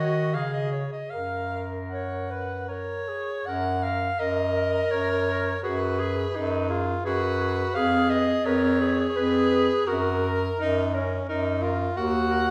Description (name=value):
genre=classical, lyrical piece for single-reed quartet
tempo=76-88 BPM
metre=3/4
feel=rubato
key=F# major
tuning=A4 = 440 Hz
part: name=clear soprano saxophone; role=melody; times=0.0-12.5 s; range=A#4 to Gb5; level=-31 LUFS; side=equal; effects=none
part: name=clear clarinet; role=second line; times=0.0-12.5 s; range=F#4 to B4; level=-38 LUFS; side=equal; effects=none
part: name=mellow tenor saxophone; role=accompaniment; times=0.0-12.5 s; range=C#4 to C#5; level=-31 LUFS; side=equal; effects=none
part: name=warm bass clarinet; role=bass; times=0.0-12.5 s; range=Eb2 to D#3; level=-29 LUFS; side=equal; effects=none
room=wet recital hall reverb, RT60 1.4 s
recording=heard from further back in the room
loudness=-26 LUFS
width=mono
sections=0.0-3.5 A section; 3.5-12.5 B section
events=none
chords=0.3 C#5; 1.1 F#; 5.6 G#m7/F#; 7.8 C#7/E#; 9.9 F#; 12.0 Ebm